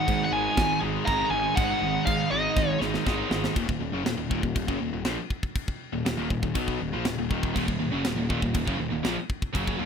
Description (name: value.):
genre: heavy metal.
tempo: 120 BPM.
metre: 4/4.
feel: straight.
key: Eb minor.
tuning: A4 = 440 Hz.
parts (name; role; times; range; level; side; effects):
high-gain lead guitar; melody; 0.0-2.8 s; Eb5 to Bb5; -27 LUFS; left 1 dB; distortion, digital delay.
heavy high-gain guitar; riff; 0.0-9.9 s; Eb2 to Eb4; -34 LUFS; left 15 dB; distortion.
overdriven electric guitar; riff; 0.0-9.9 s; Eb2 to Cb4; -30 LUFS; equal; none.
scooped high-gain guitar; riff; 0.0-3.5, 7.5-9.9 s; Eb2 to Ab3; -31 LUFS; right 13 dB; distortion.
fuzz picked electric bass; bass; 0.1-9.9 s; Eb1 to Ab2; -34 LUFS; equal; overdrive.
tight metal drum kit; drums; 0.1-9.8 s; crash cymbal, kick drum, snare drum; -30 LUFS; equal; none.
room: light reverb.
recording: rough home demo mix.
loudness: -24 LUFS.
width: side -7 dB against mid.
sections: 0.0-3.6 A section; 3.6-9.9 B section.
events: half time 0.0-3.6; drum fill 2.6-3.6.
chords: 0.0 Abm; 3.6 Ebm.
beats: 0.07 0.57 1.06 | 1.56 2.06 2.56 3.06 | 3.56 4.05 4.55 5.05 | 5.55 6.05 6.55 7.05 | 7.54 8.04 8.54 9.04 | 9.54.